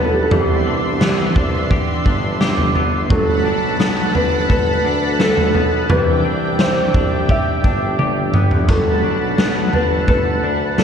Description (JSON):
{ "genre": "dream pop", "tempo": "86 BPM", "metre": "4/4", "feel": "straight", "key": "G major", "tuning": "A4 = 438 Hz", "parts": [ { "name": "felt-muted upright piano", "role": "melody", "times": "0.0-10.8 s", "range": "G4 to E5", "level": "-21 LUFS", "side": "equal", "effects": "ping-pong delay, slapback echo" }, { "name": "mellow electric guitar", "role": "accompaniment", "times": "0.0-10.8 s", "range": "C3 to B4", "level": "-24 LUFS", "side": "right 2 dB", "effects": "tremolo, analog chorus" }, { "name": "lush unison pad", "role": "sustained chords", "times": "0.0-10.8 s", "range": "B3 to C6", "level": "-22 LUFS", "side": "right 1 dB", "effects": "chorus" }, { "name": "semi-hollow electric guitar", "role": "arpeggios", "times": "0.0-10.8 s", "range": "E3 to A4", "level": "-24 LUFS", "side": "left 3 dB", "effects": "lush chorus, ping-pong delay, slapback echo" }, { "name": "clear tuba", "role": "bass", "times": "0.0-10.8 s", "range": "G1 to D2", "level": "-24 LUFS", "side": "equal", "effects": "none" }, { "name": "raw garage drum kit", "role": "drums", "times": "0.3-10.8 s", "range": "kick drum, snare drum, splash cymbal, toms", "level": "-18 LUFS", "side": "equal", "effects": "none" } ], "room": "wet lush hall reverb, RT60 1.8 s, small room ambience", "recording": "big arena sound", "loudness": "-14 LUFS", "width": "side -7 dB against mid", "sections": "0.0-10.8 A section", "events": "drum fill 8.0-8.7", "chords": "0.3 Cmaj9; 3.1 Gmaj9; 5.9 Cmaj9; 8.7 Gmaj9" }